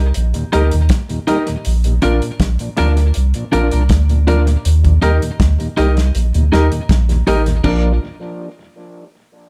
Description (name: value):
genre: roots reggae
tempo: 80 BPM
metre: 4/4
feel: straight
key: Bb major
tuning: A4 = 441 Hz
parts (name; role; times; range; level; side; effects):
- dark upright piano; stabs; 0.0-7.9 s; D4 to Bb4; -22 LUFS; equal; none
- warm sub bass; bass; 0.0-8.0 s; A1 to Eb2; -16 LUFS; equal; none
- damped 70s drum kit; drums; 0.1-7.8 s; crash cymbal, hi-hat, kick drum, snare drum; -22 LUFS; equal; tape echo
- mellow tonewheel organ; accompaniment; 0.4-7.9 s; Eb2 to Eb4; -26 LUFS; equal; chorus vibrato, slow rotary speaker, tape echo
- clean electric guitar; accompaniment; 0.5-7.9 s; D4 to Eb5; -24 LUFS; equal; spring reverb, tape echo
room: light reverb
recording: none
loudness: -15 LUFS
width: mono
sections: 0.0-7.6 A section; 7.6-9.5 B section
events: none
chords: 0.0 Eb; 1.7 Bb; 4.6 Eb; 7.6 Bb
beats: 0.16 0.90 | 1.65 2.40 3.15 3.90 | 4.65 5.40 6.15 6.89 | 7.64